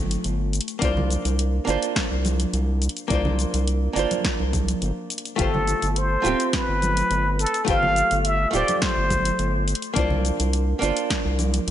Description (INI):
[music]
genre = sunset chillout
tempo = 105 BPM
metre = 4/4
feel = straight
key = unclear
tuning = A4 = 440 Hz
[part]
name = archtop guitar, miked and amplified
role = accompaniment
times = 0.0-11.7 s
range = A3 to C5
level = -27 LUFS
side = moving between left 6 dB and right 5 dB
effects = auto-pan, vintage 12-bit sampler grit, ping-pong delay
[part]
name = round analog bass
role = bass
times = 0.0-11.7 s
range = D1 to C2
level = -24 LUFS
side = equal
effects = none
[part]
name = deep house drum kit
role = drums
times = 0.1-11.7 s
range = cabasa, hi-hat, snare drum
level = -28 LUFS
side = left 1 dB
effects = none
[part]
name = electronic kick drum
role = drums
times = 0.8-11.2 s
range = none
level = -28 LUFS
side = equal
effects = none
[part]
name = congas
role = percussion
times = 1.0-11.5 s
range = none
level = -31 LUFS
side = right 3 dB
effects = none
[part]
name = trumpet with plunger mute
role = melody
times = 5.4-9.6 s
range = A4 to F5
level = -23 LUFS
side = equal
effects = ping-pong delay
[sound]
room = light reverb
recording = nothing above 10.8 kHz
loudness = -20 LUFS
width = side -11 dB against mid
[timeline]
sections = 0.0-11.7 A section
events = none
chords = 0.0 G9sus4; 0.8 C9sus4; 5.4 G9sus4; 10.0 C9sus4